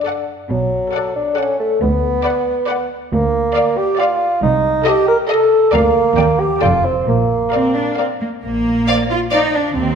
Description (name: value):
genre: cinematic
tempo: 137 BPM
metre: 3/4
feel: straight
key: Bb major from 3.1 s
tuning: A4 = 440 Hz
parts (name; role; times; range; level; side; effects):
- mellow bassoon; accompaniment; 0.0-9.5 s; F3 to Bb4; -16 LUFS; right 1 dB; none
- rich studio violin section; melody; 0.1-9.4 s; Eb5 to G5; -26 LUFS; left 2 dB; none
- clear studio violin section; second line; 0.1-9.4 s; D5 to Eb5; -25 LUFS; left 4 dB; none
- warm studio viola section; accompaniment; 0.1-9.4 s; A4 to D5; -25 LUFS; equal; none
- rich studio cello section; bass; 0.5-10.0 s; C2 to F4; -20 LUFS; right 1 dB; none
- rich studio double bass section; bass; 0.5-10.0 s; F1 to Eb2; -23 LUFS; right 3 dB; none
- clear clarinet; second line; 8.9-9.5 s; D5; -25 LUFS; equal; none
room: wet concert hall reverb, RT60 1.9 s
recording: minimal, uncompressed stereo recording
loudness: -14 LUFS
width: side -7 dB against mid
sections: 0.0-8.4 A section; 8.4-10.0 B section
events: none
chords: 0.0 D; 0.5 Bm7; 1.8 Bm/D; 3.1 Bb/D; 4.4 Adim/C; 5.7 Bb/D; 6.2 Ebmaj7; 6.6 F69; 7.1 Bb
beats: 0.07 | 0.51 0.95 1.39 | 1.82 2.26 2.69 | 3.12 3.56 3.99 | 4.43 4.86 5.30 | 5.74 6.18 6.62 | 7.07 7.53 7.98 | 8.44 8.88 9.32 | 9.77